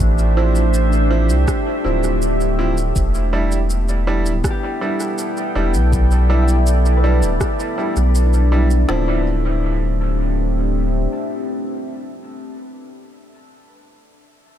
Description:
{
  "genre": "ambient dub",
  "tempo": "81 BPM",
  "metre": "4/4",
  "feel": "straight",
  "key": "D dorian",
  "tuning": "A4 = 440 Hz",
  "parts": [
    { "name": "deep dark ambient pad", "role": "sustained chords", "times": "0.0-12.6 s", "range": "A3 to G5", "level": "-23 LUFS", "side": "equal", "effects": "chorus, built-in reverb" },
    { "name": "warm sub bass", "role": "bass", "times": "0.0-11.1 s", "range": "D1 to C2", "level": "-16 LUFS", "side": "equal", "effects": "none" },
    { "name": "electronic shaker and rim click", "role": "drums", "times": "0.0-8.9 s", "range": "none", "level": "-30 LUFS", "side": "right 2 dB", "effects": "dub echo" },
    { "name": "organic electronic drum kit", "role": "drums", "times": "0.0-9.1 s", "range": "kick drum, snare drum", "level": "-21 LUFS", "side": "equal", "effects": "none" },
    { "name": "clear upright piano", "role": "stabs", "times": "0.4-12.3 s", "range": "F3 to E4", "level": "-24 LUFS", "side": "right 3 dB", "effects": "dub echo" },
    { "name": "concert harp", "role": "arpeggios", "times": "0.9-12.3 s", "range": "D4 to E5", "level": "-30 LUFS", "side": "left 4 dB", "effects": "vintage 12-bit sampler grit, dub echo" }
  ],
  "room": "little or no reverb",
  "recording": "echo-heavy mix",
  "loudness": "-15 LUFS",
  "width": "side -10 dB against mid",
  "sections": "0.0-8.9 A section; 8.9-11.8 B section",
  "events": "none",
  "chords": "0.0 Dm9; 3.0 Em7; 8.9 Dm9",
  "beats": "| 0.00 0.74 1.48 2.22 | 2.96 3.70 4.44 5.18 | 5.92 6.67 7.41 8.15 | 8.89 9.63 10.37 11.11"
}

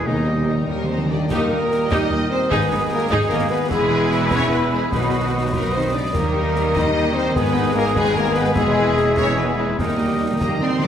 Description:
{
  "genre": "cinematic, heroic adventure film score",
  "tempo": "99 BPM (dotted quarters)",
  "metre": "6/8",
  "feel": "straight",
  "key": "unclear",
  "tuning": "A4 = 440 Hz",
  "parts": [
    { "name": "rich symphonic violin section", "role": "melody", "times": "0.0-10.9 s", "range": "Eb4 to D6", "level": "-31 LUFS", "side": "left 1 dB", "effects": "none" },
    { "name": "clear oboe", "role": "second line", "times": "0.0-10.8 s", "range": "Eb4 to E5", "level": "-28 LUFS", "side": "right 1 dB", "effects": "none" },
    { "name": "clear symphonic violin section", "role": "second line", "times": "0.0-10.9 s", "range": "Eb4 to D6", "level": "-29 LUFS", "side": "left 3 dB", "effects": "none" },
    { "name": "mellow hollow concert flute", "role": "second line", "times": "0.0-10.8 s", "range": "Eb5 to B5", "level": "-32 LUFS", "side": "left 1 dB", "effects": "none" },
    { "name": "rich symphonic viola section", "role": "accompaniment", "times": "0.0-10.9 s", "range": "Bb3 to Eb5", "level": "-26 LUFS", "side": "right 1 dB", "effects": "none" },
    { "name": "dark French horn section", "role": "sustained chords", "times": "0.0-10.4 s", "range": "Eb3 to Eb4", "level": "-23 LUFS", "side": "left 2 dB", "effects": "none" },
    { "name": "warm trombone section", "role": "sustained chords", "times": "0.0-10.8 s", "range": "Bb2 to B3", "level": "-28 LUFS", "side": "right 3 dB", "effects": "none" },
    { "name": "concert harp", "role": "arpeggios", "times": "0.0-10.9 s", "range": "E2 to B5", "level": "-30 LUFS", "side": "left 6 dB", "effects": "none" },
    { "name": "rich studio double bass section", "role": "bass", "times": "0.1-10.8 s", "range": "E1 to Eb2", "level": "-27 LUFS", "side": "right 2 dB", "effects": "none" },
    { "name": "rich symphonic cello section", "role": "bass", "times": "0.1-10.9 s", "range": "Eb2 to D4", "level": "-26 LUFS", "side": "right 2 dB", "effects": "none" },
    { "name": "warm tuba", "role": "bass", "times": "0.1-1.2 s", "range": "Eb2", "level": "-28 LUFS", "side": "right 2 dB", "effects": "none" },
    { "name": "timpani", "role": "percussion", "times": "0.1-1.9, 9.8-10.8 s", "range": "Eb3", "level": "-27 LUFS", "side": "equal", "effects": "none" },
    { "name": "bright clarinet", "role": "second line", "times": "1.3-10.9 s", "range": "E4 to Eb5", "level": "-31 LUFS", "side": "left 1 dB", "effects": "none" },
    { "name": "concert snare drum, clash cymbals and concert bass drum", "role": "drums", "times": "1.3-10.6 s", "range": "none", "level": "-28 LUFS", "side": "equal", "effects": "none" }
  ],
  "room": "wet scoring stage reverb, RT60 1.7 s",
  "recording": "none",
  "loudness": "-17 LUFS",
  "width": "side -9 dB against mid",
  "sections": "0.0-1.3 A section; 1.3-10.9 B section",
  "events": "timpani fill 0.1-1.3, 9.8-10.9",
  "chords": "0.1 Eb; 2.5 Abm; 3.7 E; 4.9 B; 6.1 Eb; 7.4 Abm; 8.6 E; 9.8 Eb",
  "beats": "| 0.06 0.68 | 1.30 1.91 | 2.51 3.12 | 3.72 4.32 | 4.93 5.54 | 6.15 6.76 | 7.36 7.97 | 8.57 9.18 | 9.79 10.41"
}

